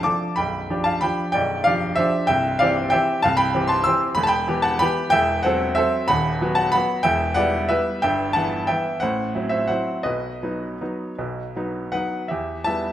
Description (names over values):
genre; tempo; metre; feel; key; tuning
classical, piano waltz; 155-201 BPM; 3/4; rubato; C major, E minor from 4.2 s; A4 = 440 Hz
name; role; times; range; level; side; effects
clear baby grand piano; solo; 0.0-12.9 s; B0 to E6; -19 LUFS; equal; none
room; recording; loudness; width
wet recital hall reverb, RT60 1.6 s; none; -19 LUFS; side -11 dB against mid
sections
0.0-12.3 A section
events
none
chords
0.4 G7/B; 2.3 C; 4.2 Em; 5.1 F#m7b5/E; 6.1 B/D#; 7.1 Em; 8.0 Em/G; 9.0 F#m7b5/A; 10.1 B; 12.3 Em